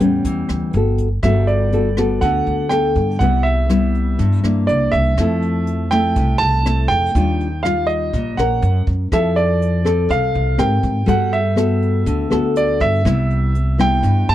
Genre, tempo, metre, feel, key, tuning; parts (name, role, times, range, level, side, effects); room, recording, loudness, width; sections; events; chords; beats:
bossa nova; 122 BPM; 4/4; straight; G major; A4 = 441 Hz
warm grand piano; melody; 0.0-14.3 s; D5 to A5; -21 LUFS; right 3 dB
nylon-string guitar; accompaniment; 0.0-14.3 s; G2 to Bb4; -19 LUFS; left 2 dB
upright bass; bass; 0.0-14.3 s; G1 to Ab2; -19 LUFS; equal
jazz brush drum kit; drums; 0.0-14.3 s; hi-hat, kick drum, rim click; -24 LUFS; equal
little or no reverb; dry, close 1970s-style studio recording; -15 LUFS; side -13 dB against mid
0.0-1.2 A section; 1.2-14.3 B section
0.0 A9; 0.7 Gmaj9; 3.2 Cmaj7; 4.7 C9; 5.2 Fmaj7; 7.1 Ebmaj9; 8.6 F#; 9.1 Fmaj7; 10.6 Abmaj9; 11.1 Gmaj9; 13.1 Cmaj7
0.25 0.75 | 1.24 1.73 2.22 2.71 | 3.21 3.70 4.19 4.68 | 5.18 5.67 6.16 6.65 | 7.14 7.64 8.13 8.62 | 9.11 9.61 10.10 10.59 | 11.08 11.57 12.06 12.56 | 13.05 13.54 14.03